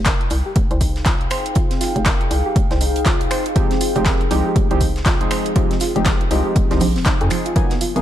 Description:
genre	deep house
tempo	120 BPM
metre	4/4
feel	swing 60% on 16ths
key	F minor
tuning	A4 = 441 Hz
part	hollow knocking FM bass	bass	0.0-8.0 s	Eb1 to F2	-22 LUFS	equal	sidechain pumping
part	warbly tape-like pad	texture	0.4-8.0 s	Eb4 to G5	-27 LUFS	left 3 dB	chorus, built-in reverb, sidechain pumping
part	soft round pluck	arpeggios	0.1-7.9 s	F3 to C5	-26 LUFS	right 4 dB	chorus, sidechain pumping, digital delay
part	electronic kick drum	drums	0.1-7.7 s	none	-18 LUFS	equal	none
part	house drum kit	drums	0.1-8.0 s	finger snaps, handclaps, hi-hat	-24 LUFS	equal	overdrive
part	tight metal drum kit	drums	0.1-8.0 s	hi-hat, snare drum	-36 LUFS	right 3 dB	none
part	warm analog keys	stabs	3.6-8.0 s	F3 to Ab4	-22 LUFS	equal	chorus, sidechain pumping, digital delay
room	light reverb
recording	dark, warm production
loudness	-15 LUFS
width	side -11 dB against mid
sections	0.0-8.0 A section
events	none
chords	0.0 Fm9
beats	0.06 0.56 1.06 | 1.56 2.06 2.56 3.06 | 3.56 4.06 4.56 5.06 | 5.56 6.06 6.56 7.06 | 7.56

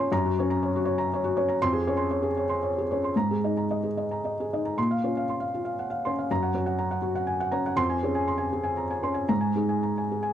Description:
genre	neoclassical minimalist piano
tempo	109-123 BPM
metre	3/4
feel	rubato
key	Bb minor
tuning	A4 = 440 Hz
part	felt-muted upright piano	solo	0.0-10.3 s	F2 to C6	-24 LUFS	equal	none
room	studio ambience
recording	dry, close 1970s-style studio recording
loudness	-24 LUFS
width	side -10 dB against mid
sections	0.0-4.8 A section; 4.8-10.3 B section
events	none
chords	0.1 Gb; 1.6 Dbmaj7/F; 3.1 Absus2; 4.8 Bbmadd9; 6.3 Gb; 7.8 Dbmaj7/F; 9.3 Absus2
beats	| 0.12 0.62 1.12 | 1.60 2.10 2.61 | 3.14 3.69 4.24 | 4.77 5.29 5.79 | 6.30 6.80 7.29 | 7.78 8.27 8.77 | 9.30 9.84

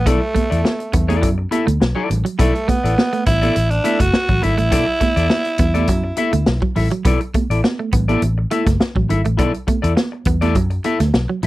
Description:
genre	funk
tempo	103 BPM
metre	4/4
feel	straight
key	B minor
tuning	A4 = 440 Hz
part	growling tenor saxophone	melody	0.0-6.8 s	A3 to F#4	-20 LUFS	right 2 dB	none
part	clean electric guitar	riff	0.0-11.5 s	F#3 to B3	-23 LUFS	right 5 dB	tremolo
part	vintage muted fingered electric bass	bass	0.0-11.5 s	F#1 to F#2	-19 LUFS	equal	none
part	clean electric guitar	accompaniment	0.1-11.5 s	E4 to E5	-22 LUFS	left 4 dB	none
part	vintage drum kit	drums	0.1-11.5 s	hi-hat, kick drum, snare drum	-19 LUFS	equal	none
part	congas	percussion	0.1-11.5 s	none	-26 LUFS	right 4 dB	none
room	little or no reverb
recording	dry, close 1970s-style studio recording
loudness	-15 LUFS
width	side -17 dB against mid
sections	0.0-11.5 A section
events	none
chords	0.0 Bm7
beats	| 0.07 0.65 1.23 1.81 | 2.40 2.98 3.56 4.14 | 4.72 5.31 5.89 6.47 | 7.06 7.64 8.22 8.80 | 9.39 9.97 10.55 11.14

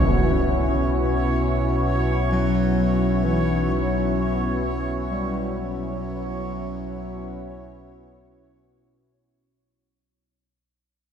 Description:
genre	dark ambient drone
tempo	free time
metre	none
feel	none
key	unclear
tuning	A4 = 440 Hz
part	sweeping resonant pad	sustained chords	0.0-9.4 s	B3 to F#4	-26 LUFS	equal	chorus
part	analog drone	drone	0.0-9.4 s	B1	-26 LUFS	equal	wide subtle chorus
part	bubbling stepped-filter texture	texture	0.0-9.4 s	C#5	-32 LUFS	right 2 dB	chorus, built-in reverb
part	dark bass clarinet	melody	2.3-8.4 s	E3 to G3	-26 LUFS	left 1 dB	analog delay
room	wet echo chamber reverb, RT60 2.2 s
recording	echo-heavy mix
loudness	-21 LUFS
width	side -8 dB against mid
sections	0.0-9.3 A section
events	fade-in on synth texture 0.0-9.3; fade-out 4.3-9.3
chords	0.0 Bsus2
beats	free time

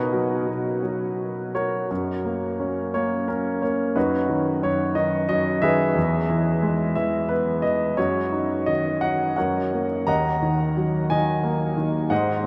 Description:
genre	classical, lyrical solo piano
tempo	88 BPM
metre	3/4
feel	uneven beats, rubato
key	B major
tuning	A4 = 440 Hz
part	warm concert grand piano	solo	0.0-12.5 s	D#2 to A#5	-23 LUFS	equal	none
room	wet huge ambient reverb, RT60 8.4 s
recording	in a vast, echoing space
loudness	-23 LUFS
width	mono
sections	0.0-1.9 A section; 1.9-12.5 B section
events	none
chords	0.0 B; 1.9 F#; 4.0 B/F#; 6.0 E; 8.0 D#m7/F#; 9.4 F#; 10.1 D#m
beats	0.49 1.20 | 1.90 2.60 3.29 | 3.96 4.64 5.30 | 5.96 6.63 7.30 | 7.97 8.66 9.37 | 10.07 10.77 11.44 | 12.11

